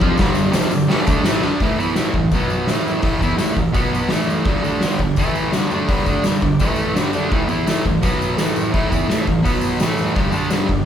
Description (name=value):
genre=garage rock duo or trio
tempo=168 BPM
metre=4/4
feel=straight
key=A minor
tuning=A4 = 435 Hz
part: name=combo organ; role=sustained chords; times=0.0-10.9 s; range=B3 to E5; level=-32 LUFS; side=left 1 dB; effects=none
part: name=fuzz guitar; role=riff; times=0.0-10.8 s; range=F2 to F4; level=-18 LUFS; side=right 1 dB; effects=distortion
part: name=oversized low-tuned drum kit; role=drums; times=0.0-10.8 s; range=hi-hat, kick drum, snare drum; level=-20 LUFS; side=equal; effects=none
part: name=tambourine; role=percussion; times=0.0-10.6 s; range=none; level=-38 LUFS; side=left 8 dB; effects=none
room=light reverb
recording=band playing live in one room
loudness=-16 LUFS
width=side -9 dB against mid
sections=0.0-1.6 A section; 1.6-10.9 B section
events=drum fill 1.4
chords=0.0 G5; 1.6 Am; 2.3 B5; 2.7 Am; 3.8 B5; 4.1 Am; 4.5 G5; 5.2 A5; 5.5 G5; 6.6 A5; 7.0 G5; 7.3 Am; 8.0 B5; 8.4 Am; 9.5 B5; 9.8 Am; 10.2 G5